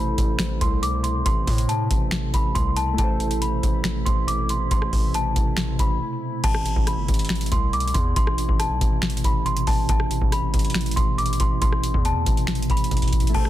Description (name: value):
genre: hip hop, trap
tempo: 139 BPM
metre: 4/4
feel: half-time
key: A minor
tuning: A4 = 438 Hz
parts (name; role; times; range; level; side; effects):
- worn celesta; melody; 0.0-13.5 s; A5 to D6; -27 LUFS; left 1 dB; low-pass filter, ping-pong delay
- warbly lo-fi synth keys; accompaniment; 0.0-6.5, 13.3-13.5 s; A3 to C5; -32 LUFS; right 2 dB; chorus, low-pass filter
- glassy FM pad; sustained chords; 0.0-13.5 s; B2 to E4; -30 LUFS; right 1 dB; ensemble chorus, built-in reverb
- distorted 808-style bass; bass; 0.0-13.5 s; G1 to A2; -26 LUFS; equal; distortion
- booming analog drum machine; drums; 0.2-13.5 s; crash cymbal, finger snaps, hi-hat, kick drum, rim click, snare drum; -22 LUFS; equal; soft clipping on snare
room: digital ambience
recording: dense, heavily limited modern master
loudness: -20 LUFS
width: side -13 dB against mid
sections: 0.0-6.4 A section; 6.4-13.5 B section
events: break 6.0-6.4; drum fill 12.9-13.3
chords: 0.0 Amadd9